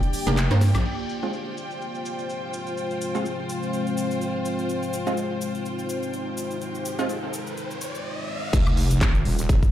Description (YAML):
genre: bass house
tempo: 125 BPM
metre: 4/4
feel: swing 56% on 16ths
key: F dorian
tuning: A4 = 443 Hz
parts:
  - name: deep dark ambient pad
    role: sustained chords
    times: 0.0-9.7 s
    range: Ab3 to D5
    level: -31 LUFS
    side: left 1 dB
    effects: chorus, built-in reverb, sidechain pumping
  - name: house drum kit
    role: drums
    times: 0.0-9.7 s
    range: cabasa, crash cymbal, handclaps, hi-hat, snare drum, woodblock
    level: -34 LUFS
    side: left 1 dB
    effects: low-pass filter on hats, low-pass filter on perc, low-pass filter on snare, low-pass filter on cymbals
  - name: dark chamber string section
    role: texture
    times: 0.0-8.1 s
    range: F4 to G5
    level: -31 LUFS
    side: left 2 dB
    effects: sidechain pumping
  - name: orchestra-hit-like synth stab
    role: stabs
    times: 0.3-7.1 s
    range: Ab3 to C5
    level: -29 LUFS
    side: right 2 dB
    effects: built-in reverb, sidechain pumping, tape echo
  - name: wobble bass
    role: bass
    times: 0.3-0.8, 8.5-9.6 s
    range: Eb1 to G2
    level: -21 LUFS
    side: equal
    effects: chorus, tube saturation, sidechain pumping
  - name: riser and sub drop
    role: sound effects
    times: 6.1-9.7 s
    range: none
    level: -32 LUFS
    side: equal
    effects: none
  - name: electronic kick drum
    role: drums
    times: 8.5-9.7 s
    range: none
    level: -20 LUFS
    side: equal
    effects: none
room: digital ambience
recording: played on a big sound system in a bare room, large studio reverb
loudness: -23 LUFS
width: side -12 dB against mid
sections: 0.9-8.5 A section; 8.5-9.7 B section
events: kick drops out 0.4-0.9; drum fill 0.5-0.9; band accent 0.7; filter sweep on synth stab 0.9-8.5; riser 6.1-8.5; drop 8.5-9.7; impact 8.5-9.7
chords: 0.0 Gm; 0.9 Fm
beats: 0.37 | 0.85 1.33 1.81 2.29 | 2.77 3.25 3.73 4.21 | 4.69 5.17 5.65 6.13 | 6.61 7.09 7.57 8.05 | 8.53 9.01 9.49